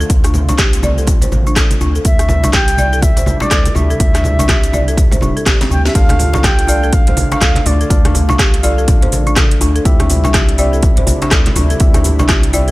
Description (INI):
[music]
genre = afro house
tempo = 123 BPM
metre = 4/4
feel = swing 60% on 16ths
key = D minor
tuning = A4 = 440 Hz
[part]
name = warm analog pad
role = sustained chords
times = 0.0-12.7 s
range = C3 to F4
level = -25 LUFS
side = right 1 dB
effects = chorus, sidechain pumping
[part]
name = folk marimba with medium hard mallets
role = arpeggios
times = 0.0-12.7 s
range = C4 to D5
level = -21 LUFS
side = equal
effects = sidechain pumping, dub echo
[part]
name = round analog bass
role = bass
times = 0.0-12.7 s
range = D1 to D2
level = -16 LUFS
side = equal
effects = sidechain pumping
[part]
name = house drum kit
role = drums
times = 0.0-12.7 s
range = handclaps, hi-hat, rim click, shaker, snare drum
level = -19 LUFS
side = equal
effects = studio reverb
[part]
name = electronic kick drum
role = drums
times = 0.1-12.4 s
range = none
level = -13 LUFS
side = equal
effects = studio reverb
[part]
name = djembe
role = percussion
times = 0.1-12.7 s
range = none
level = -23 LUFS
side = left 1 dB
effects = none
[part]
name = congas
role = percussion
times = 0.3-12.3 s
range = none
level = -22 LUFS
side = right 2 dB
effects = none
[part]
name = bright reedy bansuri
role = melody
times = 2.1-8.2 s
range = D5 to G5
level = -20 LUFS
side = equal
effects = dub echo
[part]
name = tine electric piano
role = stabs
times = 6.0-12.7 s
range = C4 to F5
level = -22 LUFS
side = left 3 dB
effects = sidechain pumping, dub echo
[sound]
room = small room ambience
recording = none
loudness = -10 LUFS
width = side -19 dB against mid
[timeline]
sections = 0.0-6.0 A section; 6.0-12.7 B section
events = drum fill 5.5-6.0; band accent 5.8; drop 6.0-12.7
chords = 0.0 Dm; 2.1 C; 6.0 Dm; 9.9 C